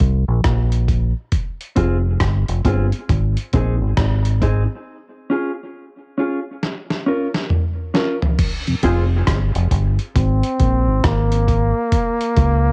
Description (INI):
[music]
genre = dub reggae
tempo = 68 BPM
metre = 4/4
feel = swing 63% on 16ths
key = F minor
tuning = A4 = 440 Hz
[part]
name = deep dub fingered electric bass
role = bass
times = 0.0-12.7 s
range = F1 to Db2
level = -19 LUFS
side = equal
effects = none
[part]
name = dusty soul sampler-style drum kit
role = drums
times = 0.0-12.6 s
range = crash cymbal, hi-hat, kick drum, rim click, snare drum, toms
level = -23 LUFS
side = equal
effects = overdrive
[part]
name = mellow electric guitar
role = accompaniment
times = 1.8-9.0 s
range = C4 to Bb4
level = -26 LUFS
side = equal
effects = cassette tape, tape echo
[part]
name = mellow tonewheel organ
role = accompaniment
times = 8.7-8.8 s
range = F2 to C3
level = -25 LUFS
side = equal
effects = chorus vibrato, slow rotary speaker, cassette tape, tape echo
[part]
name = filtered dub chord stab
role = stabs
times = 8.8-9.1 s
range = C4 to C5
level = -29 LUFS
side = equal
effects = chorus, cassette tape, tape echo
[part]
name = warm trombone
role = melody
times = 10.2-12.7 s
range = Bb3 to C4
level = -22 LUFS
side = equal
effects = cassette tape, tape echo
[sound]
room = little or no reverb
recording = home recording on cassette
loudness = -19 LUFS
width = mono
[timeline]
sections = 0.0-8.4 A section; 8.4-12.7 B section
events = break 0.0-8.4; drum fill 6.6-8.4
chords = 0.0 Bbsus2; 1.3 Fm; 3.1 Ab; 4.9 Db; 6.6 Bbm; 8.4 Fm; 10.2 Ab; 11.9 Bbm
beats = 0.44 | 1.33 2.21 3.09 3.98 | 4.86 5.74 6.62 7.51 | 8.39 9.27 10.16 11.04 | 11.92